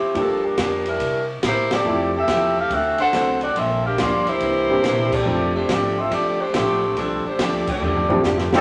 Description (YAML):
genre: jazz, big band swing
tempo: 141 BPM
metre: 4/4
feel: swing 66% on 8ths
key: F major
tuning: A4 = 442 Hz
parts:
  - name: warm saxophone section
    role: melody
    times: 0.0-8.5 s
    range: D3 to F#5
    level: -23 LUFS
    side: equal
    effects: none
  - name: upright bass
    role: bass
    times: 0.0-8.6 s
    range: F1 to C3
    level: -33 LUFS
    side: equal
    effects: none
  - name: warm baby grand piano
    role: accompaniment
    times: 0.1-8.6 s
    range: E3 to C5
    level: -26 LUFS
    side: equal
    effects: none
  - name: open jazz drum kit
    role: drums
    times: 0.2-8.6 s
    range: crash cymbal, hi-hat, kick drum, ride cymbal, snare drum, toms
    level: -29 LUFS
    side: equal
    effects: none
  - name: archtop guitar, miked and amplified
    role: accompaniment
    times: 1.8-8.5 s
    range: G2 to G4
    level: -30 LUFS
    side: equal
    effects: none
  - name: clear trombone section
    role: second line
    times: 7.7-8.6 s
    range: D3 to D4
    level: -32 LUFS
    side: equal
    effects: none
  - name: clear trumpet section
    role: melody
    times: 8.6 s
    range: C4 to D5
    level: -18 LUFS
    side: equal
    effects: none
room: wet studio reverb, RT60 0.6 s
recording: none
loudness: -20 LUFS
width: mono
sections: 0.0-8.6 A section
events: band accent 1.6, 5.1, 7.6; drum fill 7.8-8.6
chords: 0.2 Gm7; 1.0 C13; 1.9 Fmaj9; 2.7 D7; 3.6 Gm7; 4.4 C9; 5.3 F69